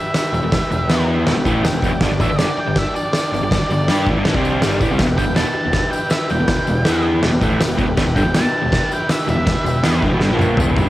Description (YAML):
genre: garage rock duo or trio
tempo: 161 BPM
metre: 4/4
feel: straight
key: E minor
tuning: A4 = 440 Hz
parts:
  - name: octave-fuzz lead guitar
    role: melody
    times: 0.0-10.0 s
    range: D5 to A5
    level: -23 LUFS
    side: right 1 dB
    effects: distortion, cassette tape
  - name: overdriven combo organ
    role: sustained chords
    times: 0.0-10.9 s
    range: D4 to G5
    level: -26 LUFS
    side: equal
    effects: cassette tape
  - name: oversized low-tuned drum kit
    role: drums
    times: 0.1-10.9 s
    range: crash cymbal, kick drum, snare drum, toms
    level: -19 LUFS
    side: equal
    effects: cassette tape
  - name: tambourine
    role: percussion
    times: 0.1-10.9 s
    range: none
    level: -38 LUFS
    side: left 6 dB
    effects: none
  - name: crunchy overdriven guitar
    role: riff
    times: 0.3-10.9 s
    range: E2 to G4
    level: -19 LUFS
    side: equal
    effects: cassette tape
  - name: growling picked electric bass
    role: bass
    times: 0.3-10.9 s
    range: E1 to G2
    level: -23 LUFS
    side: equal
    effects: overdrive
room: light reverb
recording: home recording on cassette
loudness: -15 LUFS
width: side -16 dB against mid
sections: 0.0-10.9 A section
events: lead electric guitar solo 0.0-10.9; transistor combo organ fill 1.5-2.0; drum fill 10.2-10.9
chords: 0.0 Em; 2.0 G5; 5.0 Em